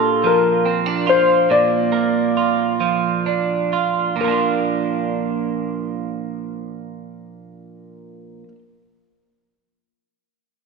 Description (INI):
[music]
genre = pop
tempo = 42-49 BPM (dotted quarters)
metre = 6/8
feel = straight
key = Bb major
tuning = A4 = 440 Hz
[part]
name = warm grand piano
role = melody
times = 0.0-8.4 s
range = A4 to D5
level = -19 LUFS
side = left 5 dB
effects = none
[part]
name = twelve-string electric guitar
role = accompaniment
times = 0.0-8.6 s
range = Bb2 to F4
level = -20 LUFS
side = right 8 dB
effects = spring reverb
[sound]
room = wet echo chamber reverb, RT60 2.2 s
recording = 1960s-style stereo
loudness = -16 LUFS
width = side -4 dB against mid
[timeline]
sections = 0.0-4.2 A section; 4.2-7.1 B section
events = slowing down 0.0-4.2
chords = 0.0 Bb